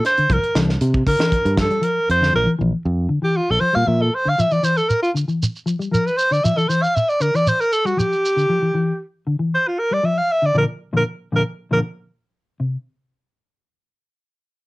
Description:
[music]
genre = afrobeat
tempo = 117 BPM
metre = 4/4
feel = straight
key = unclear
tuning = A4 = 440 Hz
[part]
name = breathy alto saxophone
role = melody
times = 0.0-11.8 s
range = F4 to F5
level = -18 LUFS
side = equal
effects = none
[part]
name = tight funk drum kit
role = drums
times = 0.0-2.3 s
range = hi-hat, kick drum, snare drum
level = -23 LUFS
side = equal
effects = cassette tape
[part]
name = mellow electric guitar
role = arpeggios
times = 0.2-12.8 s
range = Bb2 to G3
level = -21 LUFS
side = left 2 dB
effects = cassette tape
[part]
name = fingered electric bass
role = bass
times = 0.2-4.3 s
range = Bb1 to C3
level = -19 LUFS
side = equal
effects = tube saturation
[part]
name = shekere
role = percussion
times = 4.4-8.5 s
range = none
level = -24 LUFS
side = right 1 dB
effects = none
[sound]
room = moderate studio ambience, RT60 0.5 s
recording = home recording on cassette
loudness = -17 LUFS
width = side -20 dB against mid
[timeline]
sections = 0.0-12.6 A section; 12.6-14.7 B section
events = alto saxophone solo 0.0-12.6; band accent 10.6-12.6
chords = 0.3 C7sus4; 2.3 Bb5; 4.4 Dmadd9; 10.6 Bb; 12.6 N.C.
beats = | 0.29 0.81 1.32 1.83 | 2.34 2.85 3.37 3.88 | 4.39 4.90 5.42 5.93 | 6.44 6.95 7.47 7.98 | 8.49 9.01 9.52 10.04 | 10.55 11.06 11.58 12.09 | 12.61

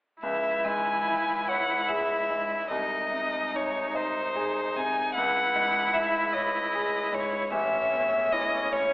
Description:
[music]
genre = classical, slow romantic movement for piano quartet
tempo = 49 BPM (dotted quarters)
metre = 6/8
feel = uneven beats, rubato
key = C# minor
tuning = A4 = 440 Hz
[part]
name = clear violin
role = melody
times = 0.2-8.9 s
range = B#4 to G#5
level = -26 LUFS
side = left 1 dB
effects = none
[part]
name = rich cello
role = second line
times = 0.2-8.9 s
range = G#3 to A3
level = -45 LUFS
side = right 2 dB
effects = none
[part]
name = bright concert grand piano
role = accompaniment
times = 0.2-8.9 s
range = A1 to D#5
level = -32 LUFS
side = equal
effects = none
[part]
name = clear viola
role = accompaniment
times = 0.2-8.9 s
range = C#4 to E4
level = -31 LUFS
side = right 1 dB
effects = none
[sound]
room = wet recital hall reverb, RT60 1.6 s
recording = telephone sound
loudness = -24 LUFS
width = side -22 dB against mid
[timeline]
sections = 0.2-8.9 A section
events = none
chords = 0.2 C#m; 2.7 G#/B#; 5.2 C#m; 7.5 A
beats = | 0.23 1.47 | 2.69 3.95 | 5.16 6.35 | 7.54 8.73

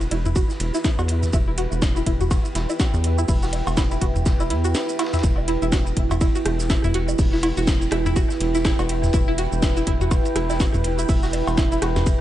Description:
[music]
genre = minimal techno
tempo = 123 BPM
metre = 4/4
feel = swing 58% on 16ths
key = E minor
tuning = A4 = 440 Hz
[part]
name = rubbery square bass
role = bass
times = 0.0-12.2 s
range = E1 to E2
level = -24 LUFS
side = equal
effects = tube saturation, sidechain pumping
[part]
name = house drum kit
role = drums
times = 0.0-12.2 s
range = hi-hat, shaker, snare drum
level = -29 LUFS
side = equal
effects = none
[part]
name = vintage drum kit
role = drums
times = 0.0-12.2 s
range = hi-hat, ride cymbal, snare drum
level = -38 LUFS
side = equal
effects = sidechain pumping on cymbals, high-pass filter on cymbals, sidechain pumping on hats, high-pass filter on hats, high-pass filter on snare, high-pass filter on room
[part]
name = bubbling stepped-filter texture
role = texture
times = 0.0-5.2 s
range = B4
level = -39 LUFS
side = equal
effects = chorus, built-in reverb, sidechain pumping
[part]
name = deep dark ambient pad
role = texture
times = 0.0-12.2 s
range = E4 to G5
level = -27 LUFS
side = right 2 dB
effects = chorus, built-in reverb, sidechain pumping
[part]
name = string-like resonator pluck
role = riff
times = 0.1-11.9 s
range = E4 to F#4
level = -28 LUFS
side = equal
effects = chorus, phaser, sidechain pumping, tape echo
[part]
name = booming analog drum machine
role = percussion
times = 0.1-12.0 s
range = cowbell, rim click, toms, woodblock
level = -28 LUFS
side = right 1 dB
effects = tape echo
[part]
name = electronic kick drum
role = drums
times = 0.4-12.2 s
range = none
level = -21 LUFS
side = equal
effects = none
[sound]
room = light reverb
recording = nothing above 10.7 kHz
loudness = -18 LUFS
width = side -13 dB against mid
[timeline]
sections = 0.0-5.2 A section; 5.2-12.2 B section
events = filter sweep on synth pluck 0.0-5.2; drop 5.2-12.2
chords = 0.0 Em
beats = 0.36 0.84 | 1.33 1.82 2.31 2.80 | 3.28 3.77 4.26 4.75 | 5.24 5.72 6.21 6.70 | 7.19 7.67 8.16 8.65 | 9.14 9.63 10.11 10.60 | 11.09 11.58 12.06

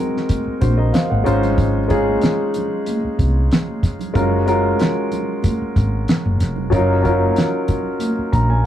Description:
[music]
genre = lush 1970s-style soul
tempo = 93 BPM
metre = 4/4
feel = swing 54% on 16ths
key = Db major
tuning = A4 = 440 Hz
[part]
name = warm concert grand piano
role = accompaniment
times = 0.0-8.7 s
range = Gb3 to Bb5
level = -19 LUFS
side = left 1 dB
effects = none
[part]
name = cloth-damped thuddy drum kit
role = drums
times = 0.2-8.5 s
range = hi-hat, kick drum, snare drum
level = -19 LUFS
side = equal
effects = none
[part]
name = congas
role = percussion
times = 0.3-8.5 s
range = none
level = -28 LUFS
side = right 2 dB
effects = none
[part]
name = hollow-body short-scale fingered electric bass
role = bass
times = 0.5-8.6 s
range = F1 to C2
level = -18 LUFS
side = equal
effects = none
[sound]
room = moderate small room ambience, RT60 0.5 s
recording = rough rehearsal-room recording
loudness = -16 LUFS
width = side -11 dB against mid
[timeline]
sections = 0.0-8.7 A section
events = grand piano fill 8.0-8.7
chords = 0.0 Ab7; 1.3 Dbmaj7/Ab; 4.2 Gbmaj7; 6.7 Ebm7/Gb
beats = 0.30 0.94 | 1.58 2.23 2.87 3.51 | 4.15 4.79 5.44 6.08 | 6.72 7.36 8.01 8.65

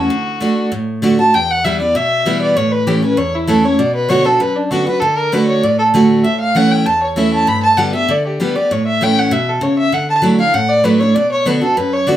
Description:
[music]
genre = bluegrass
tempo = 196 BPM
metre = 4/4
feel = straight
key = D major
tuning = A4 = 440 Hz
[part]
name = dark fiddle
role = melody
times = 0.0-12.2 s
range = D4 to B5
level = -15 LUFS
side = equal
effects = none
[part]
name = picked steel-string acoustic guitar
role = accompaniment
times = 0.0-12.2 s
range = E2 to G4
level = -15 LUFS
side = right 1 dB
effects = none
[sound]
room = wet studio reverb, RT60 0.5 s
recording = heard from further back in the room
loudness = -12 LUFS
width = side -12 dB against mid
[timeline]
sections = 0.0-12.2 A section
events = none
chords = 0.1 D; 1.3 Em; 2.6 A; 3.8 Bm; 5.0 D; 6.2 A; 7.5 G; 8.7 A; 9.9 Dadd9; 11.2 Bm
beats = | 0.11 0.41 0.72 1.03 | 1.34 1.64 1.95 2.26 | 2.56 2.87 3.18 3.48 | 3.79 4.10 4.41 4.71 | 5.02 5.33 5.63 5.94 | 6.25 6.56 6.86 7.17 | 7.48 7.78 8.09 8.40 | 8.70 9.01 9.31 9.62 | 9.93 10.23 10.54 10.85 | 11.15 11.46 11.77 12.07

